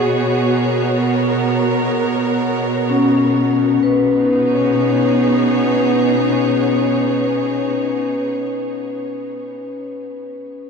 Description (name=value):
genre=ambient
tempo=free time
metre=none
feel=none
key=B major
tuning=A4 = 440 Hz
part: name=clear chamber string section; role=sustained chords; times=0.0-8.5 s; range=B2 to C#5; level=-18 LUFS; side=right 2 dB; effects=shimmer reverb
part: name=vibraphone with medium hard mallets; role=arpeggios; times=0.0-10.7 s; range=C#4 to B4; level=-18 LUFS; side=left 3 dB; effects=ping-pong delay, shimmer reverb
room=wet huge ambient reverb, RT60 7.1 s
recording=dark, warm production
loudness=-14 LUFS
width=side -5 dB against mid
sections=0.0-3.8 A section; 3.8-8.3 B section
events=none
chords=0.0 G#m11/B; 3.8 B6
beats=free time